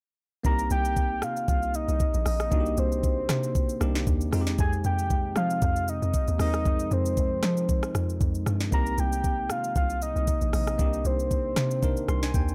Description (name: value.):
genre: amapiano.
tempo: 116 BPM.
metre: 4/4.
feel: swing 55% on 16ths.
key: C minor.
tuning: A4 = 441 Hz.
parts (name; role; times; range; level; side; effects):
bell-like tine electric piano; accompaniment; 0.4-12.5 s; Ab3 to C6; -36 LUFS; equal; none.
deep dark ambient pad; sustained chords; 1.8-12.5 s; C3 to Eb4; -40 LUFS; equal; none.
hollow log drum bass; bass; 0.4-12.5 s; Bb1 to F3; -30 LUFS; equal; none.
afro-pop drum kit; drums; 0.4-12.5 s; hi-hat, kick drum, rim click, shaker, snare drum; -30 LUFS; equal; none.
soft octave-layered synth lead; melody; 0.5-12.5 s; C5 to Bb5; -32 LUFS; equal; chorus, digital delay.
room: digital ambience.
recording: dark, warm production.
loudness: -26 LUFS.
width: mono.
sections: 0.4-12.5 A section.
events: drop 0.4-12.5; tine electric piano fill 11.8-12.5.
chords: 0.4 Cm9; 4.3 Fm7; 8.7 Cm9.